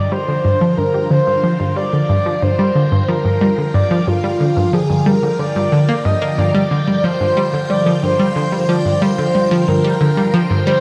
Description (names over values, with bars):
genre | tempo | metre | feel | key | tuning
ambient, sequencer-driven space music | 91 BPM | 4/4 | straight | G minor | A4 = 440 Hz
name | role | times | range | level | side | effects
breathy flute-like synth lead | melody | 0.0-10.8 s | F4 to Eb5 | -21 LUFS | equal | analog chorus, delay
phased string machine | sustained chords | 0.0-10.8 s | D3 to G5 | -24 LUFS | equal | ensemble chorus, phaser
analog pluck | riff | 0.0-10.8 s | G2 to Bb3 | -18 LUFS | equal | chorus, cassette tape, delay
room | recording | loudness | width
wet concert hall reverb, RT60 2.2 s | none | -16 LUFS | mono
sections
0.0-10.8 A section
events
fade-in on string machine 0.0-10.8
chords
0.0 Gm7